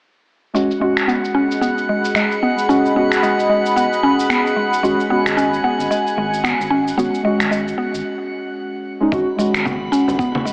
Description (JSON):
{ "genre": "organic downtempo", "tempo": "112 BPM", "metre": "4/4", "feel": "swing 58% on 16ths", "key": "G# minor pentatonic", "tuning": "A4 = 441 Hz", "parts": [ { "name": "muted felt-like synth keys", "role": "accompaniment", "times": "0.5-10.5 s", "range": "G#3 to F#4", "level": "-21 LUFS", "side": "equal", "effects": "chorus, sidechain pumping, low-pass filter, digital delay" }, { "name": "warm analog pad", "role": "sustained chords", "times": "0.5-10.5 s", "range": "G#4 to B5", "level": "-21 LUFS", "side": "equal", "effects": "chorus, sidechain pumping" }, { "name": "mallet-like synth pluck", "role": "arpeggios", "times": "0.5-10.5 s", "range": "G#3 to C#4", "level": "-20 LUFS", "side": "equal", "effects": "chorus, phaser, cassette tape, digital delay" }, { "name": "electronic cabasa, finger snaps and congas", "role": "drums", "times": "0.6-10.5 s", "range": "none", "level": "-23 LUFS", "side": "equal", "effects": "low-pass filter on perc, low-pass filter on snare, low-pass filter on room" }, { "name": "drifting glass-harmonics texture", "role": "texture", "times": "0.8-10.5 s", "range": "F#5 to B5", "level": "-26 LUFS", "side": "equal", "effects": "chorus, built-in reverb" }, { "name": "round analog bass", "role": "bass", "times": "4.8-10.5 s", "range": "G#1", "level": "-32 LUFS", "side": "equal", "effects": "sidechain pumping" }, { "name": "electronic kick drum", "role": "drums", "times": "9.1-10.3 s", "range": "none", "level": "-29 LUFS", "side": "equal", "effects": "none" }, { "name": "frame drum", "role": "percussion", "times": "10.1-10.2 s", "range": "none", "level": "-27 LUFS", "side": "equal", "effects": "none" } ], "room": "moderate huge ambient reverb, RT60 4.0 s", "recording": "AM radio sound", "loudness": "-15 LUFS", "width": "side -32 dB against mid", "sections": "0.5-9.1 A section; 9.1-10.5 B section", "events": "filter sweep on synth pluck 0.5-9.1; break 8.0-9.1", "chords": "0.5 G#m7", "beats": "| 0.55 1.08 1.62 2.15 | 2.69 3.23 3.76 4.30 | 4.83 5.37 5.91 6.44 | 6.98 7.51 8.05 8.58 | 9.12 9.65 10.19" }